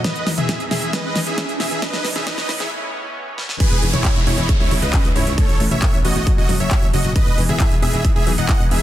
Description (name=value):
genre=uplifting trance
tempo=135 BPM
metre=4/4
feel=straight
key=E major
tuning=A4 = 439 Hz
part: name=supersaw chords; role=melody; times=0.0-8.8 s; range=E4 to F#5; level=-24 LUFS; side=right 1 dB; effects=sidechain pumping, dub echo
part: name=lush unison pad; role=sustained chords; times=0.0-8.8 s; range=E2 to G#4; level=-30 LUFS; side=equal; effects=chorus, sidechain pumping
part: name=wide unison pluck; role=arpeggios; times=0.0-8.8 s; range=G#2 to A4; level=-28 LUFS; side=left 4 dB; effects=sidechain pumping, dub echo
part: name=big-room dance drum kit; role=drums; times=0.0-8.8 s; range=crash cymbal, handclaps, hi-hat, snare drum, toms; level=-24 LUFS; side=equal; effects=small room reverb
part: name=electronic kick drum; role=drums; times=0.0-8.6 s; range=none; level=-17 LUFS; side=equal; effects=high-pass filter on kick, small room reverb
part: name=riser and downlifter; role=sound effects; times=0.0-7.2 s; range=none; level=-29 LUFS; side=right 1 dB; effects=none
part: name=solid FM bass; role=bass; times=3.7-8.8 s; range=E1 to C#2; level=-22 LUFS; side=equal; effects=sidechain pumping
room=little or no reverb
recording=dense, heavily limited modern master, high-pass filter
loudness=-16 LUFS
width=side -13 dB against mid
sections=0.0-3.6 A section; 3.6-8.8 B section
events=build-up 0.0-3.6; drum fill 0.0-2.7, 3.4; riser 0.0-2.7; filter sweep on synth pluck 0.0-3.6; filter sweep 0.0-3.6; break 2.7-3.6; drop 3.6-8.8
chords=0.0 Emaj7; 1.8 Aadd9; 3.6 Emaj7; 4.5 C#madd9; 5.4 Aadd9; 6.3 F#m; 7.2 Emaj7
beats=| 0.05 0.49 0.94 1.38 | 1.82 2.27 2.71 3.16 | 3.60 4.05 4.49 4.94 | 5.38 5.82 6.27 6.71 | 7.16 7.60 8.05 8.49